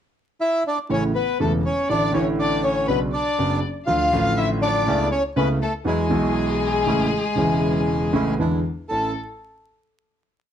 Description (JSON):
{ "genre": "tango", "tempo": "120 BPM", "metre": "4/4", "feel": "rubato", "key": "A major", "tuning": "A4 = 440 Hz", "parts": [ { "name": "bandoneon", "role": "melody", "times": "0.4-9.1 s", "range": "G#3 to F5", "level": "-23 LUFS", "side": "left 1 dB", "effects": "none" }, { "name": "warm violin", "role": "second line", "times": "0.9-9.1 s", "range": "G#4 to F5", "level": "-29 LUFS", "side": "left 5 dB", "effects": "none" }, { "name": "warm concert grand piano", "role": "accompaniment", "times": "0.9-9.1 s", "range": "E1 to F#4", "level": "-22 LUFS", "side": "right 1 dB", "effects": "none" }, { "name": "bandoneon", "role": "stabs", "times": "4.9-9.1 s", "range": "C#3 to E4", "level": "-31 LUFS", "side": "right 3 dB", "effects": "none" } ], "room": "moderate studio reverb, RT60 0.6 s", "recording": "dark, warm production, vinyl crackle", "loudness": "-19 LUFS", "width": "side -9 dB against mid", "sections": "0.0-0.9 pickup bar; 0.9-8.9 A section; 8.9-10.5 final chord", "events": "none", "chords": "0.0 Dsus2; 0.9 A; 1.9 Dsus2/A; 2.9 Bmadd9; 3.9 Dm; 4.9 Aadd9/C#; 5.9 Eadd9; 6.9 A; 8.4 E7; 8.9 A", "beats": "0.39 | 0.89 1.39 1.89 2.39 | 2.89 3.38 3.88 4.38 | 4.87 5.37 5.87 6.37 | 6.87 7.37 7.88 8.38 | 8.89" }